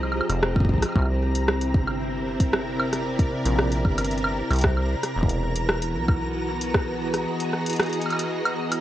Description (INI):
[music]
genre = IDM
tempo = 114 BPM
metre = 4/4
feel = straight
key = unclear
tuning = A4 = 440 Hz
[part]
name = soft string machine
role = sustained chords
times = 0.0-8.8 s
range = C3 to Eb5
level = -27 LUFS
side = equal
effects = ensemble chorus
[part]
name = deep acid bass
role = bass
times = 0.0-7.3 s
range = E1 to C2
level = -26 LUFS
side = equal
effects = none
[part]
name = booming analog drum machine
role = drums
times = 0.0-8.8 s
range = hi-hat, rim click, woodblock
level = -26 LUFS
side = equal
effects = none
[part]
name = flickering grainy texture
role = texture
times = 0.0-8.8 s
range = Bb5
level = -34 LUFS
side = equal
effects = built-in reverb
[part]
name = electronic kick drum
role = drums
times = 0.6-6.8 s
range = none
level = -22 LUFS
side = equal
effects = none
[sound]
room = light reverb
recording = worn, warbling old tape, cassette tape, warbly pitch drift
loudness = -22 LUFS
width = side -13 dB against mid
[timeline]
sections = 0.0-8.8 A section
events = none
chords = 0.0 Fm7; 1.0 C7; 5.2 Emaj7